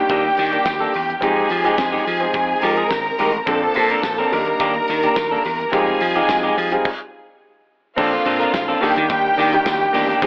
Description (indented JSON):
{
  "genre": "disco",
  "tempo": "107 BPM",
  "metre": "4/4",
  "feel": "straight",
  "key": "unclear",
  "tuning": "A4 = 440 Hz",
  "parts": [
    { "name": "bright symphonic string section", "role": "second line", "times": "0.0-10.3 s", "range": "F4 to Bb5", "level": "-20 LUFS", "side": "equal", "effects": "none" },
    { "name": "clear concert grand piano", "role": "accompaniment", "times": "0.0-10.3 s", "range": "Eb3 to Bb4", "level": "-22 LUFS", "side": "equal", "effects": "none" },
    { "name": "clean electric guitar", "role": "accompaniment", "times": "0.1-10.3 s", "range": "Ab3 to Bb4", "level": "-22 LUFS", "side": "equal", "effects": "none" },
    { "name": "slap bass", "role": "bass", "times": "0.1-10.3 s", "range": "Ab1 to F3", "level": "-24 LUFS", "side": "equal", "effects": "none" },
    { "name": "damped 70s drum kit", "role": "drums", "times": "0.1-10.3 s", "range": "crash cymbal, hi-hat, kick drum, snare drum", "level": "-28 LUFS", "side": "equal", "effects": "gated reverb" },
    { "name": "tambourine", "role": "percussion", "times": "0.7-9.8 s", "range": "none", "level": "-37 LUFS", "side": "equal", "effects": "none" }
  ],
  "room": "light reverb, small room ambience",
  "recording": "telephone sound",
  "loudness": "-16 LUFS",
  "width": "side -37 dB against mid",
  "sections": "0.0-8.0 A section; 8.0-10.3 B section",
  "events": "stop 6.8-8.0",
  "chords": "0.0 Ebmaj7; 1.2 Fm9; 3.5 Bbmaj9; 4.3 Ebmaj7; 5.7 Fm9; 8.0 Bbmaj9; 8.8 Ebmaj7"
}